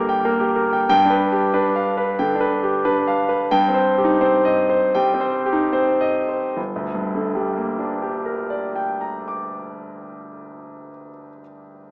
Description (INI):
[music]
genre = classical, virtuoso piano study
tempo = 70-93 BPM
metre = 4/4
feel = rubato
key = G minor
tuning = A4 = 438 Hz
[part]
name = bright concert grand piano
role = solo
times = 0.0-11.9 s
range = G1 to D6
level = -18 LUFS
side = equal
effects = none
[sound]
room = wet recital hall reverb, RT60 1.5 s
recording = small speaker sound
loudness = -17 LUFS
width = side -29 dB against mid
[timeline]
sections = 0.9-6.6 A section; 6.6-9.9 B section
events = slowing down 0.0-6.6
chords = 0.0 Gm; 0.9 G7; 3.5 Cm/G; 6.6 Gm